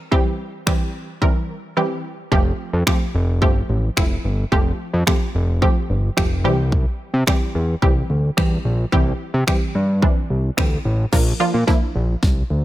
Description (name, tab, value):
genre	dance-pop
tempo	109 BPM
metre	4/4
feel	straight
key	unclear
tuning	A4 = 441 Hz
part	wide unison pluck	accompaniment	0.0-12.6 s	E3 to Bb4	-23 LUFS	right 1 dB	sidechain pumping
part	pop drum kit	drums	0.1-12.4 s	crash cymbal, finger snaps, kick drum, snare drum	-19 LUFS	equal	none
part	fat analog bass	bass	2.3-12.6 s	F1 to C3	-19 LUFS	equal	sidechain pumping
room	digital ambience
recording	none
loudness	-17 LUFS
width	side -15 dB against mid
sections	0.0-11.1 A section; 11.1-12.6 B section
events	silent gap 1.8-2.3; build-up 11.1-12.6; drum fill 11.1-12.6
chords	0.0 C; 2.3 Fadd9; 6.4 C; 11.1 Bb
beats	| 0.12 0.67 1.22 1.77 | 2.32 2.87 3.42 3.97 | 4.52 5.07 5.62 6.17 | 6.72 7.27 7.82 8.38 | 8.93 9.48 10.03 10.58 | 11.13 11.68 12.23